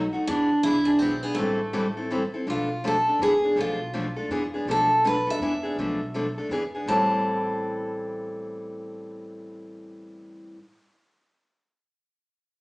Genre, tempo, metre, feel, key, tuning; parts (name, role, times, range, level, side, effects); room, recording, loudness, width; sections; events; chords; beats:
acoustic string swing (jazz manouche); 164 BPM; 3/4; swing 62% on 8ths; A minor; A4 = 440 Hz
picked steel-string acoustic guitar; melody; 0.0-10.5 s; A3 to A5; -24 LUFS; equal
picked steel-string acoustic guitar; accompaniment; 0.0-10.6 s; A2 to A4; -28 LUFS; left 1 dB
upright bass; bass; 0.0-10.5 s; A1 to E2; -39 LUFS; equal
wet large studio reverb, RT60 0.8 s; band playing live in one room, small speaker sound; -22 LUFS; side -24 dB against mid
0.0-2.5 A section; 2.5-6.9 B section; 6.9-9.1 C section
0.3 E7; 1.4 Am7; 2.5 Bm7b5; 3.2 E7; 3.6 Bm7b5; 4.3 E7b9; 4.7 Bm7b5; 5.4 E7; 5.8 Bm7b5; 6.5 E7; 6.9 Am7
| 0.28 0.64 1.00 | 1.37 1.74 2.10 | 2.47 2.83 3.20 | 3.56 3.93 4.30 | 4.66 5.03 5.40 | 5.76 6.13 6.50 | 6.87 7.23 7.60 | 7.97 8.34 8.70